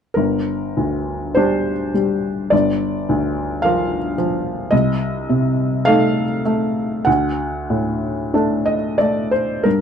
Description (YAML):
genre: classical, romantic nocturne for solo piano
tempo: 45-56 BPM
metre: 4/4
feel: rubato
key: G minor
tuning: A4 = 440 Hz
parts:
  - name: felt-muted upright piano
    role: solo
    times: 0.1-9.8 s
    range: G1 to F#5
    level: -16 LUFS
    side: equal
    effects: none
room: light reverb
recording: dark, warm production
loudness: -17 LUFS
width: side -7 dB against mid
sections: 0.2-9.8 A section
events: none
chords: 0.2 Gm; 2.5 Bb/G; 4.7 Adim/C; 7.1 D